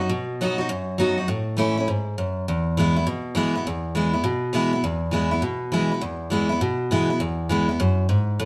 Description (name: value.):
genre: rock.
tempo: 203 BPM.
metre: 4/4.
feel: swing 65% on 8ths.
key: E major.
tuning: A4 = 440 Hz.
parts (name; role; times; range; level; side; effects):
picked steel-string acoustic guitar; solo; 0.0-8.5 s; E2 to F#4; -23 LUFS; equal; none.
room: moderate stone room reverb, RT60 1.0 s.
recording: band playing live in one room.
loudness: -23 LUFS.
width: mono.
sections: 0.0-3.7 A section; 3.7-8.5 B section.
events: none.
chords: 0.0 B; 1.3 A; 2.5 E.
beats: | 0.10 0.40 0.69 0.99 | 1.29 1.58 1.88 2.18 | 2.47 2.77 3.06 3.36 | 3.66 3.95 4.25 4.54 | 4.84 5.14 5.43 5.73 | 6.02 6.32 6.61 6.91 | 7.20 7.50 7.79 8.09 | 8.38.